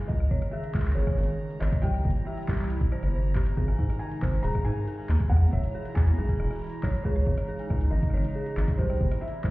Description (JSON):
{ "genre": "IDM", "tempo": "138 BPM", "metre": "4/4", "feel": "straight", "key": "unclear", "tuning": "A4 = 439 Hz", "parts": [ { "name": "hollow soft pad", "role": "sustained chords", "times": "0.0-9.5 s", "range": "B2 to E4", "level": "-35 LUFS", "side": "right 2 dB", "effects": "chorus" }, { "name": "bubbling stepped-filter texture", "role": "texture", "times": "0.0-9.5 s", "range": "Bb5", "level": "-48 LUFS", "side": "right 1 dB", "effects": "chorus, built-in reverb, sidechain pumping" }, { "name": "felt-muted upright piano", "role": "melody", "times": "0.1-9.5 s", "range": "C5 to Bb5", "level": "-38 LUFS", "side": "equal", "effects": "digital delay" }, { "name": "rubbery square bass", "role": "bass", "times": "0.1-9.5 s", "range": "Eb1 to Ab2", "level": "-25 LUFS", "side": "equal", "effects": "none" }, { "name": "electronic kick drum", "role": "drums", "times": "0.1-9.5 s", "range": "none", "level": "-28 LUFS", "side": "equal", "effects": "none" }, { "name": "electro analog drum machine", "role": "drums", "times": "0.2-9.5 s", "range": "handclaps, hi-hat, rim click", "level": "-45 LUFS", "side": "equal", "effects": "tape echo" }, { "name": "dark detuned synth bell", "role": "arpeggios", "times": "0.3-9.5 s", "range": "G4 to Ab5", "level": "-38 LUFS", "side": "left 1 dB", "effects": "chorus, vintage 12-bit sampler grit, ping-pong delay" } ], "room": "digital ambience", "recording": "heard muffled through a wall, stone room reverb, EQ", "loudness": "-24 LUFS", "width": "side -19 dB against mid", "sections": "0.0-9.5 A section", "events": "none", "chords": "0.1 Dbmadd9; 1.8 C; 3.6 Ab; 5.3 E; 7.0 Dbmadd9; 8.8 C" }